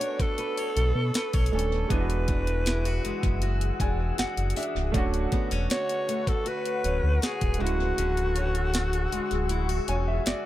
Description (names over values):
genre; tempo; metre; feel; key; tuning
contemporary R&B; 79 BPM; 4/4; straight; B dorian; A4 = 440 Hz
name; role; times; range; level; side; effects
breathy alto saxophone; melody; 0.0-10.3 s; F#4 to C#5; -31 LUFS; equal; tape echo
clear concert grand piano; accompaniment; 0.0-10.5 s; C#3 to G#5; -35 LUFS; right 4 dB; none
glassy FM pad; sustained chords; 0.0-10.5 s; G#4 to E6; -36 LUFS; left 2 dB; ensemble chorus, built-in reverb
fingerpicked steel-string acoustic guitar; arpeggios; 0.0-10.5 s; D3 to C#5; -34 LUFS; left 2 dB; tape echo
trap drum kit; drums; 0.0-10.4 s; hi-hat, kick drum, snare drum; -29 LUFS; equal; tape echo
sub bass with octave; bass; 0.8-10.3 s; C#1 to B2; -27 LUFS; equal; none
room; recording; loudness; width
small room ambience; echo-heavy mix; -24 LUFS; side -14 dB against mid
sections
0.0-10.5 A section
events
grand piano fill 3.4-4.9, 9.5-10.5; kick muted 8.0-10.5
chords
0.0 Bm9; 1.9 E9; 4.9 Bm9/D; 7.6 Dmaj9#11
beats
0.39 1.15 | 1.91 2.67 3.42 4.18 | 4.94 5.70 6.46 7.22 | 7.98 8.74 9.50 10.26